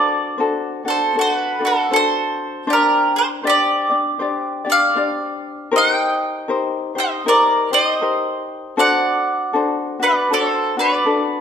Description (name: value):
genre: Hawaiian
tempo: 79 BPM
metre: 4/4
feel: swing 60% on 8ths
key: unclear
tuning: A4 = 440 Hz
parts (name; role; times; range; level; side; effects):
- mandolin; melody; 0.0-11.4 s; F#4 to G5; -17 LUFS; right 1 dB; none
- ukulele; accompaniment; 0.0-11.4 s; D4 to D5; -22 LUFS; left 4 dB; none
room: wet recital hall reverb, RT60 1.4 s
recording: none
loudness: -16 LUFS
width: side -8 dB against mid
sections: 0.0-11.4 A section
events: none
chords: 0.0 D7; 2.7 Gsus4; 5.7 Cm7; 8.8 D7